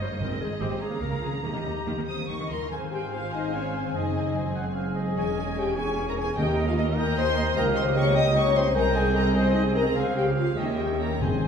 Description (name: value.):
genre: classical, dramatic, fast romantic movement for symphony orchestra.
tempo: 92-102 BPM (dotted quarters).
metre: 6/8.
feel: rubato.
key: Ab major.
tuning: A4 = 442 Hz.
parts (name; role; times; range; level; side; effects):
rich symphonic violin section; melody; 0.0-11.5 s; Eb5 to Eb6; -37 LUFS; left 2 dB; none.
rich symphonic violin section; second line; 0.0-11.5 s; C5 to Eb6; -36 LUFS; equal; none.
warm clarinet; second line; 0.0-11.5 s; G4 to Eb5; -37 LUFS; left 2 dB; none.
warm symphonic viola section; accompaniment; 0.0-11.5 s; F3 to C5; -34 LUFS; right 2 dB; none.
concert harp; arpeggios; 0.0-11.5 s; Gb2 to Db6; -35 LUFS; left 3 dB; none.
rich symphonic cello section; bass; 0.0-11.5 s; C2 to Eb3; -31 LUFS; right 2 dB; none.
rich symphonic double bass section; bass; 0.0-11.5 s; Fb1 to Eb2; -31 LUFS; right 3 dB; none.
timpani; percussion; 0.2-2.0, 6.4-6.9, 11.2-11.5 s; Ab2 to Eb3; -33 LUFS; equal; none.
dark French horn section; sustained chords; 2.1-11.5 s; C4 to Eb5; -27 LUFS; left 4 dB; none.
hollow concert flute; second line; 2.7-11.5 s; Eb5 to Ab5; -37 LUFS; equal; none.
warm oboe; second line; 2.7-11.5 s; C5 to G5; -34 LUFS; right 2 dB; none.
room: wet recital hall reverb, RT60 1.3 s.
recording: recorded in a church or concert hall.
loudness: -23 LUFS.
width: side -7 dB against mid.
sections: 0.0-2.7 A section; 2.7-11.5 B section.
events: none.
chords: 0.2 Ab; 0.8 Bbm/Db; 1.4 Eb; 2.7 Ab; 4.0 Ab7/Gb; 5.2 Dbm/Fb; 6.4 Eb; 7.6 Eb7/Db; 8.8 Ab/C; 10.0 Dbmaj7; 10.6 Eb7b9.